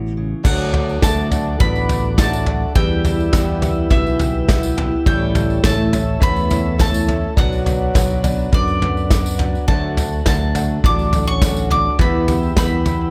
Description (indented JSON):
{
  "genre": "indie folk with a building arrangement",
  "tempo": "104 BPM",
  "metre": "4/4",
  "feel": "straight",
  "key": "D major",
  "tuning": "A4 = 440 Hz",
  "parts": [
    { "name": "bowl-back mandolin", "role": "melody", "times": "0.0-13.1 s", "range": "C#5 to D6", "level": "-27 LUFS", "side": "equal", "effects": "none" },
    { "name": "fingerpicked steel-string acoustic guitar", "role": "accompaniment", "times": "0.0-0.5 s", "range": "B2 to E3", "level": "-29 LUFS", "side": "equal", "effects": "none" },
    { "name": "picked electric bass", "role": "bass", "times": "0.0-13.1 s", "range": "A1 to F#2", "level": "-24 LUFS", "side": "equal", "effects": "none" },
    { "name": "picked twelve-string acoustic guitar", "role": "accompaniment", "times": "0.4-13.1 s", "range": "A2 to A4", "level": "-28 LUFS", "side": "equal", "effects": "none" },
    { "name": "warm grand piano", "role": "accompaniment", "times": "0.4-13.1 s", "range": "A1 to E5", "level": "-31 LUFS", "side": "equal", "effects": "none" },
    { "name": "mellow tonewheel organ", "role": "sustained chords", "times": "0.4-13.1 s", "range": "A4 to E6", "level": "-33 LUFS", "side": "equal", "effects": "slow rotary speaker" },
    { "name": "soft brush drum kit", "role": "drums", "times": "0.4-13.0 s", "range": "crash cymbal, kick drum, snare drum, toms", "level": "-20 LUFS", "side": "equal", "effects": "none" },
    { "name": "clear French horn", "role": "second line", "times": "0.5-13.1 s", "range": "D3 to D4", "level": "-28 LUFS", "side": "equal", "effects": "none" },
    { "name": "tambourine", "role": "percussion", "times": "0.9-13.0 s", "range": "none", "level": "-38 LUFS", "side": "equal", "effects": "none" }
  ],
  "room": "light reverb",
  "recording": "none",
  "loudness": "-17 LUFS",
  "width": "mono",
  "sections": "0.5-13.1 A section",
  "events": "none",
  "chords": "0.5 D; 2.8 Em; 5.1 A; 7.4 Bm; 9.7 D; 12.0 Em"
}